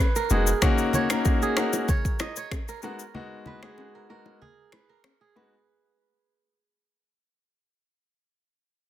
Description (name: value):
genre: afrobeats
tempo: 95 BPM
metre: 4/4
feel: straight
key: unclear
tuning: A4 = 440 Hz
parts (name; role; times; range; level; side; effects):
- kora; riff; 0.0-6.6 s; G#4 to Eb5; -30 LUFS; right 6 dB; digital delay
- afro-pop drum kit; drums; 0.0-5.2 s; finger snaps, kick drum, rim click, shaker; -24 LUFS; equal; soft clipping on snare
- clear baby grand piano; accompaniment; 0.3-5.5 s; G#3 to F#4; -28 LUFS; left 4 dB; none
- clean 808-style bass; bass; 0.3-0.5 s; F1; -23 LUFS; equal; none
- bongos and congas; percussion; 0.3-5.5 s; none; -34 LUFS; left 2 dB; none
room: little or no reverb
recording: dense, heavily limited modern master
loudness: -22 LUFS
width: side -12 dB against mid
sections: 0.0-5.7 A section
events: fade-out 0.0-5.7; break 3.1-5.7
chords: 0.0 B6; 0.6 Ebm7; 2.8 B6